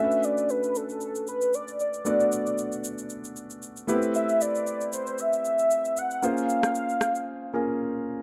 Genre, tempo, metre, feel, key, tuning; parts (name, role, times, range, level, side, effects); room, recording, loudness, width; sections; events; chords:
amapiano; 115 BPM; 4/4; swing 55% on 16ths; A4 = 441 Hz
warm velvety synth lead; melody; 0.0-7.8 s; A4 to F#5; -28 LUFS; equal; chorus, tape echo
warm concert grand piano; accompaniment; 0.0-8.2 s; A3 to D5; -32 LUFS; equal
electronic shaker and rim click; drums; 0.1-7.3 s; -38 LUFS; equal
light reverb; dark, warm production; -27 LUFS; mono
0.0-8.2 A section
break 7.3-8.2
0.0 Bm9; 3.9 Am9; 6.2 A#m9